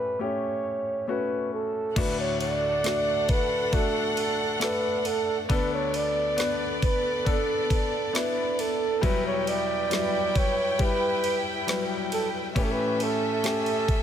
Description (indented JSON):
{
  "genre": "pop ballad",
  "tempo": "68 BPM",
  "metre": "4/4",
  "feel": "straight",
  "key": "unclear",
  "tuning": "A4 = 440 Hz",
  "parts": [
    { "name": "breathy flugelhorn", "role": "melody", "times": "0.0-14.0 s", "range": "A4 to D5", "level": "-27 LUFS", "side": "right 2 dB", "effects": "none" },
    { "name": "clear baby grand piano", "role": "accompaniment", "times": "0.0-14.0 s", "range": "D2 to B4", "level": "-30 LUFS", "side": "left 5 dB", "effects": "none" },
    { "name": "warm chamber violin section", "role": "second line", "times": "2.0-14.0 s", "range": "B3 to G5", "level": "-31 LUFS", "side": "equal", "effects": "none" },
    { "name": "smooth R&B drum kit", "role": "drums", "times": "2.0-14.0 s", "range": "crash cymbal, kick drum, ride cymbal, snare drum", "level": "-29 LUFS", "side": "equal", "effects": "none" }
  ],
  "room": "light reverb, small room ambience",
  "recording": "none",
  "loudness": "-24 LUFS",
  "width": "side -9 dB against mid",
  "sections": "0.0-2.0 A section; 2.0-14.0 B section",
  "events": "none",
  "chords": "0.0 A7; 2.0 D; 5.5 Bm7/D; 9.0 Emadd9; 12.6 A7",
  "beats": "0.20 1.08 | 1.97 2.85 3.73 4.61 | 5.50 6.38 7.26 8.14 | 9.03 9.91 10.79 11.67 | 12.55 13.44"
}